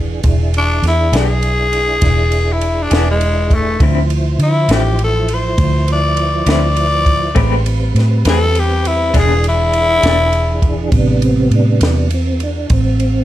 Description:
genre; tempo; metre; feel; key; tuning
slow blues; 67 BPM (dotted quarters); 12/8; straight; A minor; A4 = 440 Hz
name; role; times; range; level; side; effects
tonewheel organ; sustained chords; 0.0-13.2 s; C3 to C5; -21 LUFS; right 2 dB; slow rotary speaker, chorus vibrato
vintage muted fingered electric bass; bass; 0.0-13.2 s; E1 to D3; -15 LUFS; equal; none
compact cocktail drum kit; drums; 0.2-13.1 s; kick drum, ride cymbal, snare drum; -19 LUFS; equal; none
growling tenor saxophone; melody; 0.6-10.9 s; G#3 to D5; -16 LUFS; left 2 dB; plate reverb
electric guitar through a small old amp; accompaniment; 1.1-10.2 s; D3 to B4; -20 LUFS; left 5 dB; tremolo
room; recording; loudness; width
light reverb; none; -12 LUFS; side -14 dB against mid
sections
0.0-10.9 A section; 10.9-13.2 A section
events
tenor saxophone solo 0.0-10.9; tonewheel organ solo 10.9-13.2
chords
0.0 E7; 3.8 Dm9; 7.4 Am9; 9.1 E7; 10.9 Am9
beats
| 0.24 1.13 2.02 2.91 | 3.80 4.69 5.58 6.47 | 7.36 8.25 9.14 10.03 | 10.92 11.81 12.70

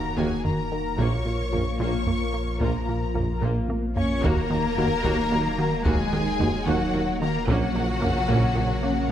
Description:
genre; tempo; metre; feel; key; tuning
cinematic, hybrid orchestral and electronic film score; 74 BPM (dotted quarters); 6/8; straight; Eb minor; A4 = 440 Hz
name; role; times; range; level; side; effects
warm symphonic violin section; melody; 0.0-9.1 s; Gb5 to Db6; -31 LUFS; left 5 dB; none
rich studio violin section; second line; 0.0-9.1 s; Gb4 to Db5; -34 LUFS; left 4 dB; none
mellow French horn section; sustained chords; 0.0-8.9 s; Bb3 to Gb4; -34 LUFS; left 3 dB; none
phased analog pad; sustained chords; 0.0-9.1 s; Db3 to Bb4; -33 LUFS; left 1 dB; phaser, chorus
thumb-piano-like synth pluck; arpeggios; 0.0-9.1 s; Eb3 to Bb4; -34 LUFS; left 2 dB; chorus
plucky analog bass; riff; 0.0-9.0 s; Eb2 to Bb3; -30 LUFS; right 2 dB; none
punchy sub bass; bass; 0.0-9.1 s; Eb1 to Bb1; -32 LUFS; equal; none
rich symphonic viola section; accompaniment; 0.2-8.6 s; F3 to Gb4; -33 LUFS; right 2 dB; none
clear tuba; bass; 0.2-8.7 s; Bb1 to Eb2; -33 LUFS; right 3 dB; none
rich symphonic cello section; bass; 0.2-9.1 s; Bb2 to Db4; -31 LUFS; right 1 dB; none
rich symphonic double bass section; bass; 0.2-8.6 s; Bb1 to Eb2; -31 LUFS; right 2 dB; none
taiko ensemble; drums; 0.4-8.8 s; none; -30 LUFS; equal; none
room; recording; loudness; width
moderate scoring stage reverb, RT60 1.4 s; none; -22 LUFS; side -10 dB against mid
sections
0.0-4.2 A section; 4.2-9.1 B section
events
drum fill 3.4-4.2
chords
0.0 Ebm; 1.0 Bbm; 4.2 Ebm; 7.5 Bbm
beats
0.18 | 0.99 1.80 | 2.61 3.42 | 4.24 5.05 | 5.86 6.67 | 7.48 8.29 | 9.10

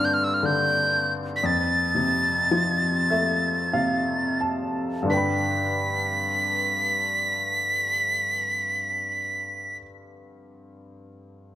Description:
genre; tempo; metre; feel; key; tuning
celtic folk, Celtic slow air; 43-63 BPM; 3/4; rubato; G mixolydian; A4 = 439 Hz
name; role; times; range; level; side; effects
breathy bright tin whistle; melody; 0.0-9.8 s; E6 to B6; -24 LUFS; right 1 dB; none
bright upright piano; accompaniment; 0.0-11.6 s; F2 to B5; -26 LUFS; left 1 dB; none
room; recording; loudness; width
moderate recital hall reverb, RT60 1.6 s; none; -22 LUFS; side -13 dB against mid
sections
0.0-5.1 A section; 5.1-9.2 B section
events
slowing down 0.0-5.1; upright piano fill 2.5-5.1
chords
0.0 Gsus4; 1.4 F; 5.1 G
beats
0.42 | 1.42 2.50 3.73 | 5.09 6.45 7.82

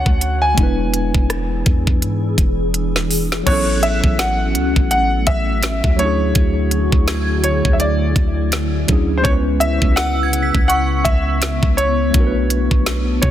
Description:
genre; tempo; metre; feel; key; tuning
contemporary R&B; 83 BPM; 4/4; swing 58% on 16ths; A major; A4 = 439 Hz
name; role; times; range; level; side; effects
clear concert grand piano; melody; 0.0-13.3 s; C5 to G#5; -21 LUFS; equal; tape echo
tine electric piano; accompaniment; 0.0-13.3 s; F#3 to C#5; -23 LUFS; equal; medium stereo tremolo
glassy FM pad; sustained chords; 0.0-13.3 s; C#3 to C#5; -25 LUFS; left 2 dB; ensemble chorus, built-in reverb, phaser
warm 808-style bass; bass; 0.0-13.3 s; E1 to B2; -20 LUFS; equal; none
synth chime; texture; 0.0-12.5 s; C#6 to B6; -27 LUFS; right 4 dB; ensemble chorus, tape echo
trap drum kit; drums; 0.1-13.3 s; crash cymbal, hi-hat, kick drum, rim click, snare drum; -18 LUFS; equal; none
room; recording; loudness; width
digital ambience; dense, heavily limited modern master; -14 LUFS; side -11 dB against mid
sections
0.0-3.5 A section; 3.5-13.3 B section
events
drum fill 2.7-3.5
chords
0.0 Dmaj7; 0.6 E7; 3.5 A69; 6.0 Dmaj9#11; 9.2 C#m7; 12.1 Bm7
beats
| 0.57 1.30 2.02 2.74 | 3.47 4.19 4.91 5.63 | 6.36 7.08 7.80 8.53 | 9.25 9.97 10.69 11.42 | 12.14 12.86

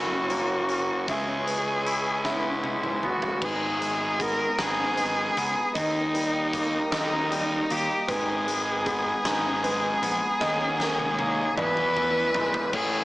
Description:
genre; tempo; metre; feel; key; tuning
post-rock; 52 BPM (dotted quarters); 6/8; straight; G# minor; A4 = 440 Hz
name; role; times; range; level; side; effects
warm cello; melody; 0.0-13.0 s; D#4 to B4; -26 LUFS; equal; slapback echo, tape echo
rich studio string section; sustained chords; 0.0-13.0 s; B3 to E6; -35 LUFS; equal; none
felt-muted upright piano; arpeggios; 0.0-13.0 s; G#4 to E5; -36 LUFS; right 2 dB; tape echo
twangy electric guitar; arpeggios; 0.0-13.0 s; E2 to E4; -32 LUFS; left 1 dB; slapback echo, tape echo
fuzz picked electric bass; bass; 0.0-13.0 s; F#1 to E2; -32 LUFS; equal; overdrive
big rock drum kit; drums; 0.3-12.9 s; crash cymbal, hi-hat, kick drum, snare drum, toms; -32 LUFS; equal; none
sludgy distorted guitar; riff; 12.7-13.0 s; A2 to A3; -29 LUFS; left 3 dB; overdrive, slapback echo
room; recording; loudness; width
moderate lush hall reverb, RT60 3.0 s; big arena sound, small speaker sound; -23 LUFS; side -18 dB against mid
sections
0.0-3.4 A section; 3.4-12.7 B section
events
drum fill 2.3-3.4, 10.4-12.7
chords
0.0 F#7; 1.1 C#m7; 3.4 G#madd9; 5.8 D#; 8.1 G#madd9; 10.4 D#m7; 11.6 E7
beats
| 1.09 2.25 | 3.42 4.59 | 5.75 6.92 | 8.08 9.25 | 10.41 11.58 | 12.74

